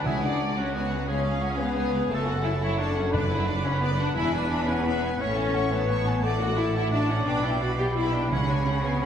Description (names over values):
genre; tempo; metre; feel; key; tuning
cinematic; 116 BPM (dotted quarters); 12/8; straight; unclear; A4 = 441 Hz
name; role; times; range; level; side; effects
warm symphonic violin section; melody; 0.0-9.1 s; D5 to C#6; -38 LUFS; left 3 dB; none
clear oboe; second line; 0.0-9.1 s; F#4 to D5; -35 LUFS; right 1 dB; none
mellow hollow silver concert flute; second line; 0.0-9.1 s; E5 to B5; -35 LUFS; left 1 dB; none
rich symphonic violin section; second line; 0.0-9.1 s; E#4 to G#5; -38 LUFS; left 1 dB; none
clear symphonic viola section; accompaniment; 0.0-9.1 s; A3 to D5; -32 LUFS; right 2 dB; none
mellow French horn section; sustained chords; 0.0-9.1 s; A3 to G4; -30 LUFS; left 4 dB; none
concert harp; arpeggios; 0.0-9.1 s; E2 to A5; -34 LUFS; left 4 dB; none
rich symphonic cello section; bass; 0.0-9.1 s; C#2 to C#3; -30 LUFS; right 2 dB; none
warm symphonic double bass section; bass; 0.0-9.1 s; E1 to C#2; -31 LUFS; right 2 dB; none
timpani; percussion; 0.1-3.6, 8.3-8.8 s; F#2 to C#3; -33 LUFS; right 1 dB; none
room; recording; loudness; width
wet recital hall reverb, RT60 1.5 s; recorded in a church or concert hall; -23 LUFS; side -8 dB against mid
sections
0.0-9.1 A section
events
none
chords
0.1 C#sus4; 1.1 C#; 2.1 F#m; 3.1 Bm/F#; 4.2 E; 5.2 A; 6.2 D/A; 7.3 G/B; 8.3 C#sus4